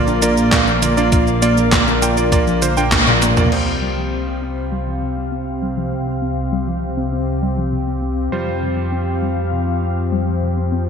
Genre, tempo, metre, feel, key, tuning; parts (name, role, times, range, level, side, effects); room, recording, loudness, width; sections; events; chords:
synthwave; 100 BPM; 4/4; straight; A4 = 440 Hz
warm analog pad; sustained chords; 0.0-10.9 s; C3 to G5; -21 LUFS; left 1 dB; wide subtle chorus
bright electric grand piano; stabs; 0.0-10.9 s; G3 to G5; -22 LUFS; right 3 dB; vintage 12-bit sampler grit, low-pass filter, ping-pong delay
chorused synth bass; bass; 0.0-10.9 s; Bb1 to F2; -22 LUFS; equal; tube saturation
warbly dusty pluck; arpeggios; 0.1-10.9 s; C3 to D4; -25 LUFS; left 2 dB; chorus, ping-pong delay
gated 80s digital drum machine; drums; 0.1-3.6 s; crash cymbal, handclaps, hi-hat, shaker, snare drum, toms; -18 LUFS; equal; gated reverb, gated reverb snare
electronic kick drum; drums; 0.5-3.0 s; -19 LUFS; equal
wet lush hall reverb, RT60 1.9 s, digital ambience; bright 1980s-style digital production; -15 LUFS; side -6 dB against mid
0.0-3.5 A section; 3.5-10.9 B section
drum fill 2.9-3.5; band accent 2.9; filter sweep on synth arpeggio sound 3.5-10.9
0.0 Bb; 3.5 Csus4; 8.3 Fsus2